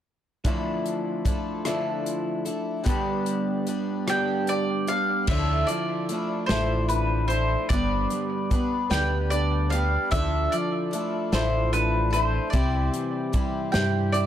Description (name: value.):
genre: folk rock and heartland rock.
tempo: 50 BPM (dotted quarters).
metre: 6/8.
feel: straight.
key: D dorian.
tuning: A4 = 440 Hz.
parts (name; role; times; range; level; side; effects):
picked twelve-string acoustic guitar; accompaniment; 0.4-14.3 s; G2 to B4; -29 LUFS; left 3 dB; plate reverb.
electric guitar through a small old amp; riff; 0.4-14.3 s; G2 to G4; -30 LUFS; right 1 dB; none.
natural country drum kit; drums; 0.4-14.3 s; crash cymbal, hi-hat, kick drum, rim click, snare drum; -28 LUFS; equal; none.
mandolin; melody; 4.1-14.3 s; B4 to G5; -27 LUFS; right 1 dB; plate reverb, analog delay.
fingered electric bass; bass; 5.3-14.3 s; G1 to G2; -25 LUFS; equal; none.
room: light reverb.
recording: dark, warm production.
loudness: -23 LUFS.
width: side -10 dB against mid.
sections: 0.5-5.3 A section; 5.3-14.3 B section.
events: none.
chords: 0.5 Dmadd9; 2.9 G; 5.3 Dmadd9; 7.7 G; 10.1 Dmadd9; 12.5 C.